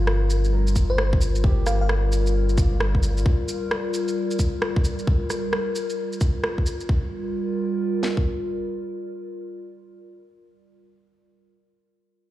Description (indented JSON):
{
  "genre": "future garage",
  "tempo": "132 BPM",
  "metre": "4/4",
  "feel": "swing 63% on 16ths",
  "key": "G minor",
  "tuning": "A4 = 441 Hz",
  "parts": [
    { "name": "felt-muted upright piano", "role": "accompaniment", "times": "0.0-3.3 s", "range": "F4 to Bb4", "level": "-38 LUFS", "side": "equal", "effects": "sidechain pumping, dub echo" },
    { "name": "warbly tape-like pad", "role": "sustained chords", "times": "0.0-10.1 s", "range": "G3 to Bb4", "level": "-27 LUFS", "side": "left 1 dB", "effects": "chorus, built-in reverb, sidechain pumping" },
    { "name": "warm sub bass", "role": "bass", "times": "0.0-3.2 s", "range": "G1", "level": "-21 LUFS", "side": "equal", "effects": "sidechain pumping" },
    { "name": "electronic rim click and shaker", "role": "drums", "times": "0.1-6.9 s", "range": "none", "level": "-30 LUFS", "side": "right 1 dB", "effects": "small room ambience" },
    { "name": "garage drum kit", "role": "drums", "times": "0.8-8.2 s", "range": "kick drum, snare drum", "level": "-21 LUFS", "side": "equal", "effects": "small room ambience" },
    { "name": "bell-like FM electric piano", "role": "melody", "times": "0.9-1.9 s", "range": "C5 to F5", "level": "-32 LUFS", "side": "equal", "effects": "chorus, dub echo" }
  ],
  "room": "light reverb, digital ambience",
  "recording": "played on a big sound system in a bare room, stone room reverb",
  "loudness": "-21 LUFS",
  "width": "side -14 dB against mid",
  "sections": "0.0-6.9 A section; 6.9-10.5 B section",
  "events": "none",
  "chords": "0.0 Gm7"
}